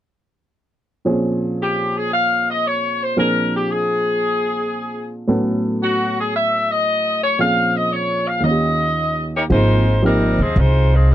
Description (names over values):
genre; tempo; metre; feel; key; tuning
jazz, big band swing; 114 BPM; 4/4; swing 69% on 8ths; unclear; A4 = 445 Hz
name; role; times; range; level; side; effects
warm baby grand piano; accompaniment; 1.0-10.4 s; Eb2 to A4; -21 LUFS; right 1 dB; none
bright saxophone section; melody; 1.6-11.1 s; F3 to F5; -18 LUFS; left 1 dB; none
upright bass; bass; 9.5-11.1 s; Ab1 to Eb2; -14 LUFS; equal; none
room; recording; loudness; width
little or no reverb; dark, warm production; -16 LUFS; side -12 dB against mid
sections
1.1-9.5 A section; 9.5-11.1 B section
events
none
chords
1.1 Bbm7; 3.2 Bb9; 5.3 A6; 7.4 Bbm7; 8.5 Eb7; 9.5 Ab6